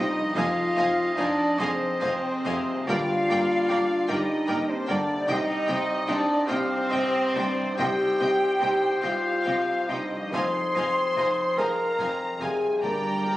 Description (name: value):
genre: cinematic, emotional film score for orchestra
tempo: 48 BPM (dotted quarters)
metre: 6/8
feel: uneven beats, rubato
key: C minor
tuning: A4 = 440 Hz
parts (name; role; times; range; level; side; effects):
- rich symphonic violin section; melody; 0.0-13.4 s; C5 to C6; -37 LUFS; left 1 dB; none
- bright clarinet; second line; 0.0-13.4 s; Ab4 to F5; -32 LUFS; equal; none
- clear symphonic violin section; second line; 0.0-13.4 s; F5 to Ab5; -37 LUFS; equal; none
- mellow hollow silver concert flute; second line; 0.0-13.4 s; C5 to C6; -30 LUFS; equal; none
- rich symphonic viola section; accompaniment; 0.0-13.4 s; Eb4 to Eb5; -36 LUFS; right 1 dB; none
- warm grand piano; accompaniment; 0.0-13.4 s; C2 to Ab4; -32 LUFS; equal; none
- mellow French horn section; sustained chords; 0.0-13.4 s; C4 to C5; -26 LUFS; left 1 dB; none
- concert harp; arpeggios; 0.0-13.4 s; F2 to Ab4; -41 LUFS; left 4 dB; none
- rich symphonic cello section; bass; 0.0-13.4 s; F2 to C3; -35 LUFS; right 2 dB; none
- rich symphonic double bass section; bass; 0.0-13.4 s; F1 to C2; -40 LUFS; right 2 dB; none
- timpani; percussion; 2.9-4.0, 12.8-13.4 s; G2; -42 LUFS; equal; none
room: wet scoring stage reverb, RT60 1.6 s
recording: recorded on a phone in the room, studio ambience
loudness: -22 LUFS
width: side -15 dB against mid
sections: 0.0-13.4 A section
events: none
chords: 0.4 Fm7; 2.9 Gm; 5.3 Cm; 10.3 Fm7; 12.8 Gm